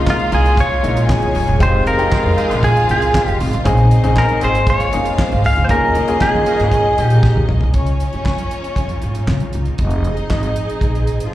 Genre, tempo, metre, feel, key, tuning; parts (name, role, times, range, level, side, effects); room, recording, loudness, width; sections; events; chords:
disco; 117 BPM; 4/4; straight; A4 = 439 Hz
rich studio string section; second line; 0.0-11.3 s; F3 to Ab5; -24 LUFS; left 1 dB; slapback echo
clear grand piano; accompaniment; 0.0-7.8 s; Ab3 to Bb4; -21 LUFS; left 3 dB; slapback echo
bright studio string section; sustained chords; 0.0-11.3 s; Db3 to Ab4; -28 LUFS; right 3 dB
upright bass; bass; 0.0-11.3 s; Eb1 to Eb3; -17 LUFS; equal
clean electric guitar; melody; 0.1-7.5 s; F4 to F5; -18 LUFS; right 1 dB; tube saturation, slapback echo
clear horn section; stabs; 0.1-6.8 s; Bb3 to C5; -26 LUFS; right 2 dB; slapback echo
damped 70s drum kit; drums; 0.1-11.3 s; handclaps, hi-hat, kick drum, snare drum, toms; -19 LUFS; equal
light reverb; live gig heard through the venue's PA, club reverb; -13 LUFS; side -14 dB against mid
0.0-7.7 A section; 7.7-11.3 B section
drum fill 7.2-7.7
0.0 Db69; 1.6 Fm7; 3.7 Bbm11; 5.7 Eb7sus4; 7.7 Db69; 9.8 Fm7